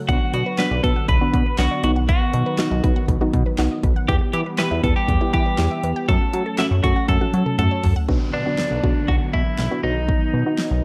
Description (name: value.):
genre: synth-pop.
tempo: 120 BPM.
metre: 4/4.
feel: straight.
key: B minor.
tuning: A4 = 440 Hz.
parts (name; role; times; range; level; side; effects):
warm analog pad; sustained chords; 0.0-10.8 s; D3 to C#4; -31 LUFS; equal; chorus.
resonant blip pluck; arpeggios; 0.0-8.1 s; A3 to G5; -34 LUFS; equal; phaser, slapback echo.
twelve-string electric guitar; melody; 0.1-10.8 s; D4 to B4; -27 LUFS; equal; spring reverb, slapback echo.
soft round pluck; accompaniment; 0.1-10.7 s; A3 to G4; -29 LUFS; equal; chorus.
chorused synth bass; bass; 0.1-10.8 s; B1 to F#3; -24 LUFS; equal; none.
pop drum kit; drums; 0.1-10.7 s; handclaps, hi-hat, kick drum, snare drum, toms; -24 LUFS; equal; none.
downlifter; sound effects; 8.1-10.8 s; none; -38 LUFS; equal; none.
room: light reverb.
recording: dark, warm production.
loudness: -20 LUFS.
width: mono.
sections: 0.0-8.1 A section; 8.1-10.8 B section.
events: drum fill 7.1-8.1.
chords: 0.1 Bm; 1.8 B; 4.1 Em; 6.1 F#m; 8.1 Bm; 9.8 B.